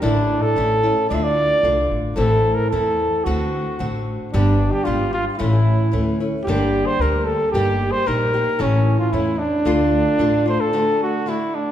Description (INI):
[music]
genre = mexican folk, mariachi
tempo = 112 BPM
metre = 2/4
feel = straight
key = D minor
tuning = A4 = 440 Hz
[part]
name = dark trumpet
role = melody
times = 0.0-11.7 s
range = C#4 to E5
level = -20 LUFS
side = right 1 dB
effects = none
[part]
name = nylon-string guitar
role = accompaniment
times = 0.0-11.7 s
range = G2 to G4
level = -21 LUFS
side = left 2 dB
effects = none
[part]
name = upright bass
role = bass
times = 0.0-10.6 s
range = G1 to E2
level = -24 LUFS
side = equal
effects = none
[sound]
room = wet recital hall reverb, RT60 1.6 s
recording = recorded in a church or concert hall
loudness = -17 LUFS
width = side -11 dB against mid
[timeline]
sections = 0.0-10.7 A section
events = none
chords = 0.0 Asus4; 0.6 A; 1.1 Dm; 2.2 Am; 3.3 D7; 4.3 G; 5.4 A; 6.5 Gm; 7.5 Eb/G; 8.6 A; 9.7 Dm; 10.7 D